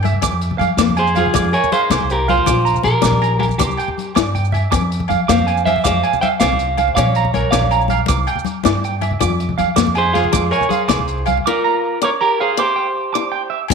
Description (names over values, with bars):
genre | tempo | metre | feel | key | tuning
highlife guitar band | 107 BPM (dotted quarters) | 12/8 | straight | F harmonic minor | A4 = 440 Hz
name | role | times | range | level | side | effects
upright bass | bass | 0.0-13.7 s | Bb1 to G2 | -20 LUFS | equal | none
agogo bells | percussion | 0.0-13.7 s | none | -29 LUFS | left 13 dB | none
congas | percussion | 0.0-13.7 s | none | -25 LUFS | left 10 dB | none
electric guitar at the edge of break-up | arpeggios | 0.1-13.6 s | E5 to D6 | -20 LUFS | right 10 dB | spring reverb, tape echo
crunchy breakbeat drum kit | drums | 0.1-13.7 s | crash cymbal, hi-hat, kick drum, snare drum | -23 LUFS | left 6 dB | none
picked old ladder-braced acoustic guitar | accompaniment | 0.2-13.7 s | Ab3 to F4 | -23 LUFS | left 12 dB | none
maracas | percussion | 0.2-13.7 s | none | -29 LUFS | right 17 dB | none
clean electric guitar | melody | 1.0-13.5 s | F4 to G5 | -18 LUFS | right 1 dB | spring reverb
room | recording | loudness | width
light reverb, studio reverb | 1960s-style stereo with parts hard left and right | -14 LUFS | side -5 dB against mid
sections
0.0-13.7 A section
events
drum fill 4.0-4.7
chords
0.2 Fm; 2.5 Bbm; 3.6 C; 4.7 Fm; 7.0 Bbm; 8.1 C; 9.2 Fm; 11.5 Bbm; 12.6 C